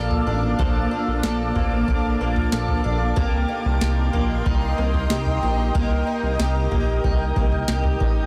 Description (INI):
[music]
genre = dream pop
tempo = 93 BPM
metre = 4/4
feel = straight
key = unclear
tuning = A4 = 442 Hz
[part]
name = granular cloud pad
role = sustained chords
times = 0.0-8.3 s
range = Bb3 to D6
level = -29 LUFS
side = equal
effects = built-in reverb
[part]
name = fingerpicked twelve-string acoustic guitar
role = arpeggios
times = 0.0-8.3 s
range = F3 to A4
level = -29 LUFS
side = equal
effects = lush chorus, tape echo
[part]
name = chorused synth bass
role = bass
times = 0.0-8.3 s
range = A1 to C2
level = -26 LUFS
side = equal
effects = none
[part]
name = booming analog drum machine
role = drums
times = 0.1-8.2 s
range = kick drum, snare drum, toms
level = -26 LUFS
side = equal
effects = none
[sound]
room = light reverb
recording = dense, heavily limited modern master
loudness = -22 LUFS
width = mono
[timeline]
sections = 0.0-8.3 A section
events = none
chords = 0.0 Bbmaj7; 3.2 Cm7